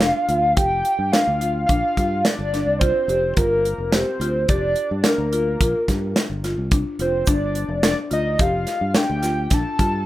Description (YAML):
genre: progressive instrumental, band music in an uneven meter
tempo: 107 BPM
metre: 7/4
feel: straight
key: G minor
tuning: A4 = 439 Hz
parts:
  - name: hollow square lead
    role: melody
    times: 0.0-10.1 s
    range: Bb4 to A5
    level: -21 LUFS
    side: equal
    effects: chorus, plate reverb, tape echo
  - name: buzzing marimba with medium hard mallets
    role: arpeggios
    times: 0.0-10.1 s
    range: D4 to G4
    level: -27 LUFS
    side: left 2 dB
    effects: plate reverb
  - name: fingered electric bass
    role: bass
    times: 0.0-10.0 s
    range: F1 to G2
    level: -25 LUFS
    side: equal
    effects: none
  - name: modern studio drum kit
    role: drums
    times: 0.0-9.9 s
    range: hi-hat, kick drum, snare drum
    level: -20 LUFS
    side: equal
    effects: none
  - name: egg shaker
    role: percussion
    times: 7.3-9.7 s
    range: none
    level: -35 LUFS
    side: right 4 dB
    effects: none
room: wet studio ambience, RT60 0.5 s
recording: rough home demo mix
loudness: -18 LUFS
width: side -15 dB against mid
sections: 0.0-10.1 A section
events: none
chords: 0.0 Gm7